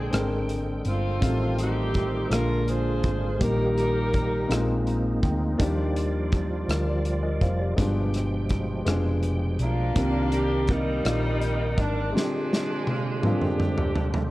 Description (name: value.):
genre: slow gospel.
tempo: 55 BPM (dotted quarters).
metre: 6/8.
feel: straight.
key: unclear.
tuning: A4 = 440 Hz.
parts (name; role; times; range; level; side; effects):
warm saxophone section; melody; 0.0-4.9, 9.6-14.3 s; F3 to C5; -29 LUFS; equal; none.
warm upright piano; accompaniment; 0.0-14.3 s; G2 to Bb5; -29 LUFS; left 1 dB; none.
bright tonewheel organ; sustained chords; 0.0-14.3 s; B2 to G5; -32 LUFS; right 1 dB; fast rotary speaker, chorus vibrato.
hollow-body short-scale fingered electric bass; bass; 0.0-12.1 s; F1 to Eb2; -27 LUFS; equal; none.
modern studio drum kit; drums; 0.1-14.3 s; hi-hat, kick drum, rim click, snare drum, toms; -27 LUFS; equal; none.
room: light reverb.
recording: worn, warbling old tape, cassette tape, warbly pitch drift.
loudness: -23 LUFS.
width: side -18 dB against mid.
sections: 0.0-14.3 A section.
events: upright piano fill 4.5-5.6; drum fill 12.1-14.3.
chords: 0.0 Bb13; 1.2 F9/A; 2.3 Bb7; 3.4 Eb/Bb; 4.5 Bb9sus4; 5.6 Ebmaj9; 7.8 G7b9; 10.0 Cm9; 12.1 Bb13.